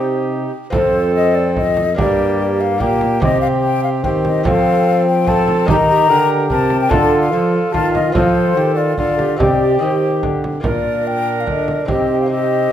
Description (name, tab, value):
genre	classical, renaissance-style consort dance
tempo	145 BPM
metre	3/4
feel	straight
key	C dorian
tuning	A4 = 440 Hz
part	mellow hollow concert flute	melody	0.0-12.7 s	C5 to Bb5	-18 LUFS	left 4 dB	none
part	tenor recorder	second line	0.0-12.7 s	F4 to Bb4	-21 LUFS	right 6 dB	none
part	clear bassoon	accompaniment	0.0-12.7 s	Bb3 to G4	-22 LUFS	left 2 dB	none
part	lute	accompaniment	0.0-12.7 s	F2 to Eb5	-23 LUFS	left 2 dB	none
part	warm trombone	bass	0.0-12.7 s	F2 to F3	-19 LUFS	right 1 dB	none
part	frame drum	percussion	0.7-12.1 s	none	-22 LUFS	right 2 dB	none
room	moderate recital hall reverb, RT60 1.3 s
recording	none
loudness	-13 LUFS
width	side -10 dB against mid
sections	0.7-10.6 A section; 10.6-12.7 B section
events	none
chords	0.0 Cm; 0.7 F; 2.0 Gm; 3.2 Cm; 4.5 F; 5.7 Eb; 6.9 Dm; 8.2 F; 9.4 Cm; 10.6 Bb; 11.9 Cm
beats	0.32 | 0.74 1.15 1.57 | 1.98 2.39 2.81 | 3.22 3.63 4.04 | 4.45 4.86 5.27 | 5.68 6.09 6.50 | 6.92 7.33 7.74 | 8.15 8.56 8.98 | 9.39 9.81 10.23 | 10.65 11.06 11.48 | 11.89 12.30 12.71